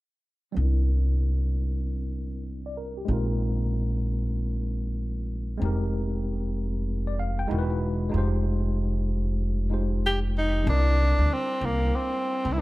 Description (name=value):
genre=hip hop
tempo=95 BPM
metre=4/4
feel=swing 63% on 16ths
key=unclear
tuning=A4 = 440 Hz
part: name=tine electric piano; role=accompaniment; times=0.5-12.6 s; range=G3 to G5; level=-32 LUFS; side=equal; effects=overdrive, fast stereo tremolo, low-pass filter
part: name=upright bass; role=bass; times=0.6-12.5 s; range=E1 to D2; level=-25 LUFS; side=equal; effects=none
part: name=breathy tenor saxophone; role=melody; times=10.1-12.6 s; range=Bb3 to G4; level=-26 LUFS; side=equal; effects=analog delay
room=light reverb, small room ambience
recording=echo-heavy mix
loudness=-24 LUFS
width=side -19 dB against mid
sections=0.6-10.7 A section; 10.7-12.6 B section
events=filter sweep on tine electric piano 0.6-10.7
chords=0.6 C9; 3.1 Bb7sus4; 5.6 Fm11; 7.5 Emaj9; 8.1 Fm9; 10.7 C9